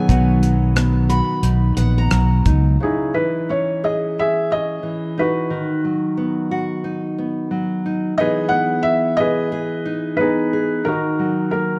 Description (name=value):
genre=acoustic folk-pop ballad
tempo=89 BPM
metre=4/4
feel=straight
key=B major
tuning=A4 = 440 Hz
part: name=felt-muted upright piano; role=melody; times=0.0-11.8 s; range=D#3 to F#5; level=-23 LUFS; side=equal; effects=none
part: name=nylon-string guitar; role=accompaniment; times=0.0-11.8 s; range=C#3 to G#4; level=-25 LUFS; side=equal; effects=none
part: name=picked steel-string acoustic guitar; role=arpeggios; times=0.0-2.9 s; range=F#5 to B5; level=-30 LUFS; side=equal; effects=none
part: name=fretless electric bass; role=bass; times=0.1-2.8 s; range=A#1 to C#2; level=-19 LUFS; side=equal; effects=none
part: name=cloth-damped thuddy drum kit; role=drums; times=0.1-2.6 s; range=hi-hat, kick drum, rim click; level=-24 LUFS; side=equal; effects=none
room=moderate concert hall reverb, RT60 2.3 s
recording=dark, warm production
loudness=-19 LUFS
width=mono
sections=0.0-2.8 A section; 2.8-11.8 A section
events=none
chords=0.1 B; 2.8 C#madd9; 5.5 B/D#; 8.2 Emaj7; 10.9 D#m